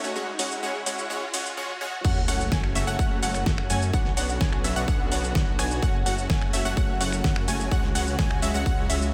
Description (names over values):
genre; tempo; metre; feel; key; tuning
EDM, festival progressive house; 127 BPM; 4/4; straight; F# minor; A4 = 440 Hz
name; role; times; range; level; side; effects
dark chamber string section; sustained chords; 0.0-9.1 s; C#3 to C#5; -38 LUFS; equal; sidechain pumping
supersaw stab; riff; 0.0-9.1 s; G#3 to G#5; -33 LUFS; equal; sidechain pumping, tape echo
pop drum kit; drums; 0.0-9.1 s; cabasa, crash cymbal, finger snaps, hi-hat, snare drum; -33 LUFS; equal; studio ambience
riser and sub drop; sound effects; 0.0-3.9 s; none; -37 LUFS; equal; none
unison pluck; arpeggios; 2.0-9.1 s; E5 to G#5; -35 LUFS; equal; sidechain pumping, tape echo
detuned saw bass; bass; 2.0-9.1 s; F#1 to F#2; -32 LUFS; equal; chorus, sidechain pumping
electronic kick drum; drums; 2.0-8.8 s; none; -28 LUFS; equal; studio ambience
room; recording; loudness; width
light reverb, digital ambience; high-pass filter; -25 LUFS; mono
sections
0.0-2.0 A section; 2.0-9.1 B section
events
build-up 0.0-2.0; riser 0.0-2.0; break 1.6-2.0; drop 2.0-9.1; impact 2.0-3.9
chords
0.2 C#sus4; 2.0 F#m; 3.9 Bmadd9; 5.8 F#m; 7.7 C#sus4